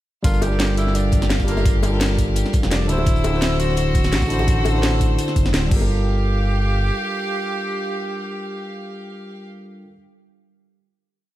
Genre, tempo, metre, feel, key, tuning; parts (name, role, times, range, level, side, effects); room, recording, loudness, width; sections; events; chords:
liquid drum and bass; 170 BPM; 4/4; swing 54% on 16ths; G dorian; A4 = 440 Hz
clear tenor saxophone; melody; 0.2-9.5 s; Bb3 to G4; -28 LUFS; right 2 dB; ping-pong delay
tine electric piano; accompaniment; 0.2-9.9 s; D3 to C5; -25 LUFS; equal; ping-pong delay
bright chamber string section; sustained chords; 0.2-9.5 s; G4 to E6; -30 LUFS; left 2 dB; sidechain pumping
smooth synth bass; bass; 0.2-6.9 s; D1 to A1; -20 LUFS; equal
crunchy breakbeat drum kit; drums; 0.2-5.6 s; hi-hat, snare drum; -33 LUFS; equal; high-pass filter on hats, high-pass filter on snare, high-pass filter on room
drum and bass drum kit; drums; 0.2-5.8 s; crash cymbal, hi-hat, snare drum; -26 LUFS; equal
electronic kick drum; drums; 0.2-5.8 s; -20 LUFS; equal
bongos; percussion; 0.4-5.9 s; -32 LUFS; left 4 dB
light reverb, small room ambience; -17 LUFS; side -14 dB against mid
0.2-5.9 drop; 5.9-8.7 final hit
drop 0.2-5.9
0.2 Gm7; 2.9 D9; 5.7 Gm7